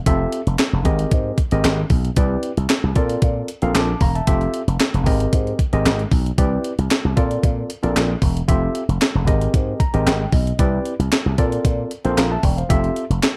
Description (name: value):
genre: early-eighties boogie funk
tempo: 114 BPM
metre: 4/4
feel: straight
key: unclear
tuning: A4 = 440 Hz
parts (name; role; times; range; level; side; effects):
- tine electric piano; accompaniment; 0.1-13.0 s; C4 to D6; -25 LUFS; equal; none
- slap bass with an envelope filter; bass; 0.1-13.2 s; E1 to Bb2; -23 LUFS; equal; none
- clean 12-bit digital drum machine; drums; 0.1-13.4 s; handclaps, hi-hat, kick drum, snare drum; -21 LUFS; equal; overdrive
room: little or no reverb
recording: dark, warm production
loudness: -19 LUFS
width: mono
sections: 0.0-13.4 A section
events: tine electric piano fill 9.5-10.6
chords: 0.1 Fmaj9; 0.9 Abmaj9; 2.2 Cmaj9; 3.0 Bbmaj9; 4.3 Fmaj9; 5.1 Abmaj9; 6.4 Cmaj9; 7.2 Bbmaj9; 8.5 Fmaj9; 9.3 Abmaj9; 10.6 Cmaj9; 11.4 Bbmaj9; 12.7 Fmaj9